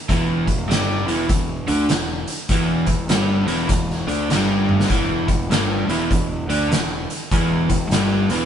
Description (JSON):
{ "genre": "blues rock power trio and southern rock", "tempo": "100 BPM", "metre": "4/4", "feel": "swing 64% on 8ths", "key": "E minor", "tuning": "A4 = 440 Hz", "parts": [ { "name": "overdriven electric guitar", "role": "riff", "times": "0.1-8.5 s", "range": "E2 to D4", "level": "-20 LUFS", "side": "equal", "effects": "spring reverb" }, { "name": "fuzz picked electric bass", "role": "bass", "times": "0.1-8.5 s", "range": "E1 to D2", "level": "-26 LUFS", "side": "equal", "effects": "overdrive" }, { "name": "oversized low-tuned drum kit", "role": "drums", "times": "0.1-8.4 s", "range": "hi-hat, kick drum, snare drum, toms", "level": "-22 LUFS", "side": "equal", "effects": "none" } ], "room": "moderate studio reverb, RT60 0.7 s", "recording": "band playing live in one room, nothing above 11.0 kHz", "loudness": "-17 LUFS", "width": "side -9 dB against mid", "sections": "0.0-8.5 A section", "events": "drum fill 4.6-4.9", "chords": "0.0 Em" }